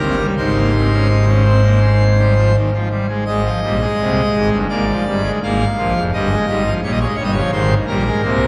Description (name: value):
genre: classical, baroque-style 4-part fugue for pipe organ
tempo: 84 BPM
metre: 4/4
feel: straight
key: Ab major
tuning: A4 = 440 Hz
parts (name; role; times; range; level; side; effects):
- pipe organ, full organ; solo; 0.0-8.5 s; F1 to F5; -16 LUFS; equal; none
room: wet cathedral reverb, RT60 6.7 s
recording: heard from further back in the room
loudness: -16 LUFS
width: mono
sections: 0.0-3.3 A section; 3.3-8.5 B section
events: none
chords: 0.4 Ab; 4.7 Bb7; 6.1 Eb7/G; 7.5 Ab